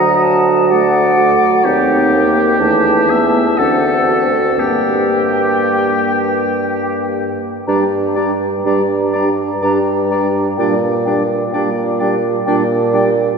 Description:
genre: classical, slow romantic movement for wind quintet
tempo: 60 BPM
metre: 3/4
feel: uneven beats, rubato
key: G minor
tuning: A4 = 440 Hz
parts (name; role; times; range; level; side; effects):
- silver concert flute; melody; 0.0-13.0 s; F#5 to Bb5; -20 LUFS; left 1 dB; none
- clear oboe; second line; 0.0-13.1 s; G4 to E5; -20 LUFS; left 2 dB; none
- bright clarinet; accompaniment; 0.0-13.1 s; C#4 to G4; -21 LUFS; right 4 dB; none
- mellow French horn; accompaniment; 0.0-13.1 s; F#3 to C4; -20 LUFS; left 1 dB; none
- mellow bassoon; bass; 0.0-13.3 s; D2 to Bb2; -16 LUFS; right 1 dB; none
room: wet cathedral reverb, RT60 4.8 s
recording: heard from further back in the room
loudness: -12 LUFS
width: side -5 dB against mid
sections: 0.0-7.7 A section; 7.7-13.4 B section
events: none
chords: 0.0 D; 1.7 Eb; 2.6 A7/E; 3.6 D7; 4.6 Gm; 10.6 Gm/Bb

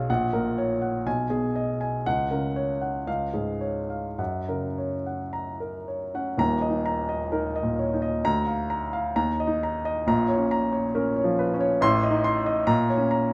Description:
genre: classical, romantic character piece for solo piano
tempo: 50-71 BPM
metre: 2/4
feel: rubato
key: F# major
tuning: A4 = 440 Hz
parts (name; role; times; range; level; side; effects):
- warm grand piano; solo; 0.0-13.3 s; Eb1 to C6; -26 LUFS; equal; none
room: light reverb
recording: close, detailed microphones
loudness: -26 LUFS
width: mono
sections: 0.0-6.4 A section; 6.4-13.3 B section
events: none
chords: 0.1 F#/A#; 1.1 G#m/B; 2.1 F#/C#; 3.1 C#; 4.2 F#; 6.4 Eb5; 8.2 Bb/D; 9.1 Eb5; 10.1 Bbm; 11.8 Adim; 12.7 Bbm

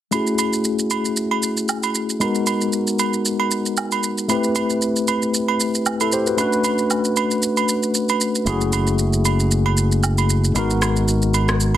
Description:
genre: amapiano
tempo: 115 BPM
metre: 4/4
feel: swing 55% on 16ths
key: F# dorian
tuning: A4 = 441 Hz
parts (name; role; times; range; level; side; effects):
- tine electric piano; accompaniment; 0.1-11.8 s; G#3 to C5; -20 LUFS; left 2 dB; medium stereo tremolo, low-pass filter
- electronic shaker and rim click; drums; 0.1-11.7 s; none; -24 LUFS; right 2 dB; soft clipping on snare
- agogo bells and woodblock; percussion; 0.1-11.8 s; none; -25 LUFS; right 8 dB; none
- modern bright fingered electric bass; bass; 8.5-11.8 s; F#1 to G#1; -19 LUFS; equal; none
room: light reverb, digital ambience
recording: dense, heavily limited modern master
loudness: -17 LUFS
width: side -12 dB against mid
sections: 0.1-11.8 A section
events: filter sweep on tine electric piano 0.1-11.8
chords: 0.1 F#m9; 2.2 G#m9; 4.3 Am9; 6.4 Bm9; 8.5 F#m9; 10.6 G#m9

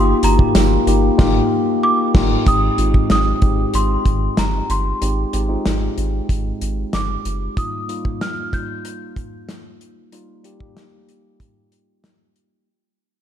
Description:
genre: 1980s-style pop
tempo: 94 BPM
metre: 4/4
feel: straight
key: Eb major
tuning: A4 = 441 Hz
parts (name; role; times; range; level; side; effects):
- worn celesta; melody; 0.0-12.0 s; Bb5 to G6; -23 LUFS; right 1 dB; ping-pong delay, slapback echo
- mellow tine electric piano; accompaniment; 0.0-12.7 s; G3 to Bb4; -21 LUFS; left 2 dB; slapback echo
- round analog bass; bass; 0.0-7.5 s; Gb1 to Ab1; -20 LUFS; equal; none
- modern studio drum kit; drums; 0.2-12.5 s; crash cymbal, hi-hat, kick drum, snare drum, tambourine; -19 LUFS; equal; none
room: light reverb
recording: none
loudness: -15 LUFS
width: side -10 dB against mid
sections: 0.0-2.5 A section; 2.5-12.7 B section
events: band accent 1.2-2.5; fade-out 2.5-12.7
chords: 0.0 Ebadd9; 2.5 Abmaj7; 7.6 Ebadd9/G

